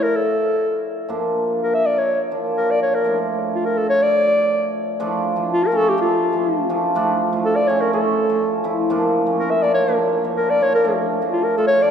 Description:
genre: klezmer.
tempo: 123 BPM.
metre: 2/4.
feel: straight.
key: D harmonic minor.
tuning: A4 = 438 Hz.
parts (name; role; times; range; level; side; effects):
dark clarinet; melody; 0.0-11.9 s; F4 to E5; -19 LUFS; left 1 dB; none.
cimbalom; accompaniment; 0.0-11.9 s; F3 to F4; -21 LUFS; right 1 dB; none.
room: wet church reverb, RT60 3.6 s.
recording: recorded in a church or concert hall.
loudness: -17 LUFS.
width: side -8 dB against mid.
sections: 0.0-5.0 A section; 5.0-11.9 A section.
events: none.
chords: 0.0 Dm; 1.1 Bb; 3.1 Dm; 8.9 Bb; 10.8 Dm.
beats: | 0.12 0.61 | 1.10 1.59 | 2.08 2.57 | 3.06 3.54 | 4.03 4.52 | 5.00 5.49 | 5.98 6.46 | 6.95 7.44 | 7.92 8.41 | 8.89 9.38 | 9.87 10.35 | 10.84 11.32 | 11.81.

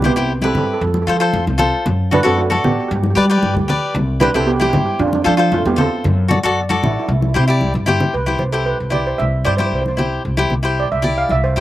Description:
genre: calypso.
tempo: 115 BPM.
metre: 4/4.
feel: straight.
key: C major.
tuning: A4 = 439 Hz.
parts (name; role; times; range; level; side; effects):
steel pan; melody; 0.0-11.6 s; G3 to F5; -20 LUFS; right 4 dB; slapback echo.
cavaquinho; accompaniment; 0.0-11.6 s; E4 to D5; -19 LUFS; left 3 dB; slapback echo.
upright bass; bass; 0.0-11.6 s; A1 to G3; -19 LUFS; equal; none.
congas; percussion; 0.0-11.4 s; none; -22 LUFS; left 1 dB; none.
room: little or no reverb.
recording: recorded outdoors, with no room sound.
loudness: -14 LUFS.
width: side -14 dB against mid.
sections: 0.0-8.1 A section; 8.1-11.6 B section.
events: drum fill 7.6-8.1; steel pan solo 8.1-11.6.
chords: 0.0 Cmaj7; 0.8 F; 1.9 D/F#; 2.9 G; 3.9 Cmaj7; 5.0 F; 6.0 D7/F#; 7.1 Cadd9.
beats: 0.29 0.81 1.33 | 1.86 2.38 2.90 3.43 | 3.95 4.47 5.00 5.52 | 6.04 6.57 7.09 7.62 | 8.14 8.66 9.19 9.71 | 10.24 10.77 11.29.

